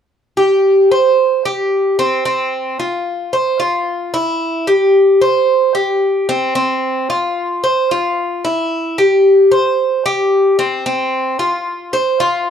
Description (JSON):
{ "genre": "latin", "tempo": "112 BPM", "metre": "4/4", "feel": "straight", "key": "C major", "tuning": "A4 = 440 Hz", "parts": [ { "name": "Cuban tres", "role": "arpeggios", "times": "0.4-12.5 s", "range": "C4 to C5", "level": "-12 LUFS", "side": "equal", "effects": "none" } ], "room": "moderate studio reverb, RT60 0.9 s", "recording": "dark, warm production", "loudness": "-12 LUFS", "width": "side -8 dB against mid", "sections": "0.1-12.5 A section", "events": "none", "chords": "none", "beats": "| 0.10 0.64 1.18 1.72 | 2.25 2.79 3.33 3.87 | 4.41 4.95 5.48 6.02 | 6.56 7.10 7.64 8.17 | 8.71 9.25 9.79 10.32 | 10.86 11.40 11.94 12.47" }